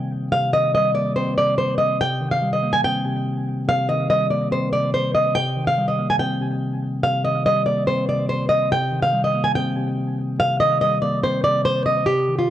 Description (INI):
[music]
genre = hip hop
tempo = 143 BPM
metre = 4/4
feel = half-time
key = C minor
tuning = A4 = 440 Hz
[part]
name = flamenco guitar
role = melody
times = 0.0-12.5 s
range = F4 to Ab5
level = -19 LUFS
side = equal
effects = analog delay
[part]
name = mellow tine electric piano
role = accompaniment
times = 0.0-12.5 s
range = C3 to C4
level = -23 LUFS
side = left 1 dB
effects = none
[sound]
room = light reverb, studio reverb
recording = dry, gritty hardware recording, cassette tape, faint mains hum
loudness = -18 LUFS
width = side -12 dB against mid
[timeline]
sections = 0.0-12.1 A section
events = none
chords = 0.0 Cm7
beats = | 0.32 0.74 1.16 1.58 | 2.00 2.42 2.84 3.26 | 3.68 4.10 4.52 4.94 | 5.36 5.78 6.20 6.62 | 7.04 7.45 7.87 8.29 | 8.71 9.13 9.55 9.97 | 10.39 10.81 11.23 11.65 | 12.07 12.49